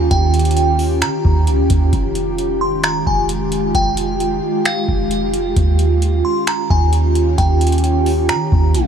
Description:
hip hop, atmospheric cloud-rap; 132 BPM; 4/4; half-time; A4 = 440 Hz
ethereal airy pad; sustained chords; 0.0-8.9 s; Eb3 to G4; -19 LUFS; right 1 dB; ensemble chorus, built-in reverb
soft 808-style bass; bass; 0.0-8.9 s; F1 to Eb3; -17 LUFS; right 1 dB
delicate synth tine bell; melody; 0.1-8.7 s; F5 to C6; -22 LUFS; right 1 dB; chorus, phaser, tremolo, low-pass filter, tape echo
booming analog drum machine; drums; 0.1-8.9 s; finger snaps, hi-hat, kick drum; -20 LUFS; equal
light reverb; tape stop; -14 LUFS; side -8 dB against mid
0.0-8.9 A section
0.0 Eb9; 1.9 Fm9; 5.6 Eb9

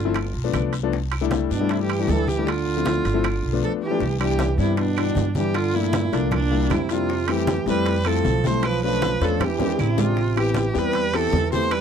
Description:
Afro-Cuban jazz; 156 BPM; 4/4; straight; C major; A4 = 440 Hz
clear viola; melody; 0.0-11.8 s; D4 to C5; -25 LUFS; right 3 dB
warm trombone; second line; 0.0-11.8 s; Bb2 to A3; -28 LUFS; right 13 dB
warm grand piano; accompaniment; 0.0-11.7 s; E3 to G4; -25 LUFS; left 14 dB
upright bass; bass; 0.0-11.8 s; G1 to G2; -25 LUFS; equal
bongos; percussion; 0.1-11.8 s; -33 LUFS; left 11 dB
claves; percussion; 0.1-11.8 s; -38 LUFS; right 16 dB
congas; percussion; 0.2-11.8 s; -29 LUFS; equal
guiro; percussion; 0.2-11.8 s; -40 LUFS; left 25 dB
timbales; percussion; 0.2-11.8 s; -30 LUFS; right 10 dB
little or no reverb; dry, close 1970s-style studio recording; -19 LUFS; side -7 dB against mid
0.0-4.0 A section; 4.0-11.8 B section
drum fill 9.2-10.2
0.2 G9; 0.9 C69; 2.5 Dm7; 3.2 G7; 4.0 Cmaj9; 5.6 Gm9; 6.3 C9; 7.1 Fmaj9; 8.6 Bm7b5; 9.4 E7alt; 10.2 Am9

